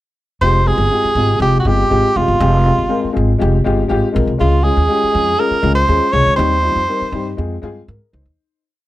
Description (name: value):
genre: uptempo 1960s-style soul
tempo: 121 BPM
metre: 4/4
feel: straight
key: F minor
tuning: A4 = 441 Hz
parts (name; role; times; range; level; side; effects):
- breathy tenor saxophone; melody; 0.4-7.3 s; F4 to Db5; -16 LUFS; right 2 dB; plate reverb
- dark upright piano; accompaniment; 0.4-8.6 s; G3 to C5; -19 LUFS; left 3 dB; plate reverb
- upright bass; bass; 0.4-8.3 s; F1 to Ab2; -16 LUFS; equal; none
room: moderate studio reverb, RT60 0.6 s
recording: none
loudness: -12 LUFS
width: side -15 dB against mid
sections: 0.4-8.4 A section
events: fade-out 6.4-8.4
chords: 0.4 Fmadd9; 4.4 Db; 6.4 Cm/Eb; 7.4 Fm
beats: | 0.42 0.92 1.41 1.91 | 2.41 2.90 3.40 3.90 | 4.39 4.89 5.39 5.88 | 6.38 6.88 7.38 7.87